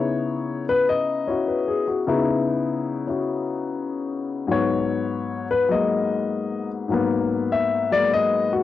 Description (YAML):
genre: solo jazz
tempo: 99 BPM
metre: 4/4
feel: swing 68% on 8ths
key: G# minor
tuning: A4 = 440 Hz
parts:
  - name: warm grand piano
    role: solo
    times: 0.0-8.6 s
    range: G#2 to E5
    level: -20 LUFS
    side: left 4 dB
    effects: cassette tape
room: light reverb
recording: home recording on cassette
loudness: -21 LUFS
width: side -12 dB against mid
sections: 0.0-8.6 A section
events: grand piano solo 0.0-8.6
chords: 0.0 C#m9; 4.5 G#m9